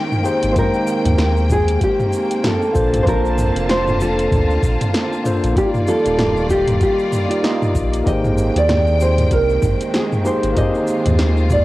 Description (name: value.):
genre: sunset chillout.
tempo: 96 BPM.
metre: 4/4.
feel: swing 58% on 16ths.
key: Ab lydian.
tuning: A4 = 440 Hz.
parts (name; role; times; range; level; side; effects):
nylon-string guitar; melody; 0.0-11.6 s; G4 to Eb5; -20 LUFS; right 1 dB; cassette tape, analog delay.
mellow tine electric piano; accompaniment; 0.0-11.6 s; Ab3 to A5; -21 LUFS; equal; auto-pan.
rich studio string section; sustained chords; 0.0-11.6 s; D3 to A5; -25 LUFS; left 1 dB; none.
deep house drum kit; drums; 0.1-11.6 s; hi-hat, shaker, snare drum, toms; -22 LUFS; equal; overdrive, cassette tape.
round analog bass; bass; 0.4-11.6 s; Eb1 to Eb2; -19 LUFS; equal; tube saturation.
electronic kick drum; drums; 0.6-11.6 s; none; -21 LUFS; equal; cassette tape.
room: light reverb.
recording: home recording on cassette.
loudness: -14 LUFS.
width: side -17 dB against mid.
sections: 0.0-11.6 A section.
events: none.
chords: 0.0 Abmaj9; 2.8 Bbmaj9; 5.6 Ebmaj9; 8.1 Abmaj9.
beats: | 0.56 1.19 1.81 2.44 | 3.06 3.69 4.31 4.94 | 5.56 6.19 6.81 7.44 | 8.06 8.69 9.31 9.94 | 10.56 11.19.